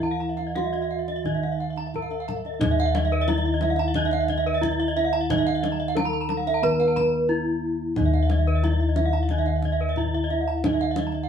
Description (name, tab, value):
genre	Balinese gamelan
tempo	90 BPM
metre	4/4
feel	straight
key	Eb pelog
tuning	A4 = 439 Hz
part	gamelan-type bronze metallophone	melody	0.0-11.3 s	Eb4 to Cb5-40c	-28 LUFS	left 1 dB	none
part	gamelan-type bronze metallophone	accompaniment	0.0-11.3 s	Eb3 to Cb4-40c	-33 LUFS	right 2 dB	none
part	gamelan-type bronze metallophone	arpeggios	0.0-11.2 s	Cb5-40c to Cb6-40c	-30 LUFS	left 2 dB	none
part	gamelan-type bossed gongs	bass	0.0-11.3 s	Eb2 to Fb4	-26 LUFS	left 1 dB	none
part	kendang	percussion	0.0-11.2 s	none	-31 LUFS	left 2 dB	none
part	gamelan-type bronze metallophone	arpeggios	0.2-11.3 s	Eb5 to Cb6-40c	-28 LUFS	right 5 dB	none
room	moderate studio ambience, RT60 0.5 s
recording	band playing live in one room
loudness	-21 LUFS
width	side -8 dB against mid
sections	0.0-2.6 A section; 2.6-11.3 B section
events	none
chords	none